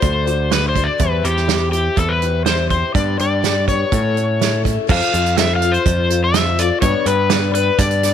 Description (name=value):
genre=folk rock and heartland rock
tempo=124 BPM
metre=4/4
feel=straight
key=unclear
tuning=A4 = 440 Hz
part: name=overdriven slide guitar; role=melody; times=0.0-8.1 s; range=G4 to F5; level=-19 LUFS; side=left 3 dB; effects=none
part: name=picked old ladder-braced acoustic guitar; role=accompaniment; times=0.0-8.1 s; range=G2 to B4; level=-22 LUFS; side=left 11 dB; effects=none
part: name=picked electric bass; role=bass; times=0.0-8.1 s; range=D2 to A2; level=-20 LUFS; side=right 1 dB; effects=none
part: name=unplugged drum kit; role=drums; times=0.0-8.1 s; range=crash cymbal, hi-hat, kick drum, snare drum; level=-20 LUFS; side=right 6 dB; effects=none
room=light reverb, small room reverb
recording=1960s-style stereo with parts hard left and right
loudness=-14 LUFS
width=side -9 dB against mid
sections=0.0-4.9 A section; 4.9-8.1 B section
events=none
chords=0.0 D; 1.0 C/E; 3.0 G; 3.9 A; 4.9 F; 6.8 G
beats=0.03 0.52 | 1.00 1.49 1.98 2.46 | 2.95 3.44 3.92 4.41 | 4.89 5.38 5.86 6.34 | 6.82 7.31 7.79